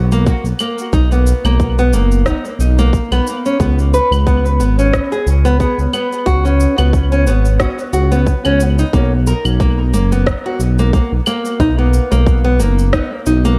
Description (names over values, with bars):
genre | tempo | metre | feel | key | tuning
organic downtempo | 90 BPM | 4/4 | swing 56% on 16ths | unclear | A4 = 441 Hz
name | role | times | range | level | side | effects
smooth synth bass | bass | 0.0-13.6 s | Gb1 to Db2 | -16 LUFS | equal | sidechain pumping
nylon-string guitar | arpeggios | 0.1-13.6 s | Bb3 to Cb5 | -19 LUFS | equal | dub echo
electronic cabasa, claves and rim click | drums | 0.1-13.6 s | none | -26 LUFS | equal | analog delay
electronic kick drum | drums | 0.3-13.1 s | none | -20 LUFS | equal | none
room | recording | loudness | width
light reverb | echo-heavy mix | -14 LUFS | mono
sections
0.0-8.9 A section; 8.9-13.6 B section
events
none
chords
0.0 Cbmaj7; 3.6 Db7(no3); 8.9 Cbmaj7(no3)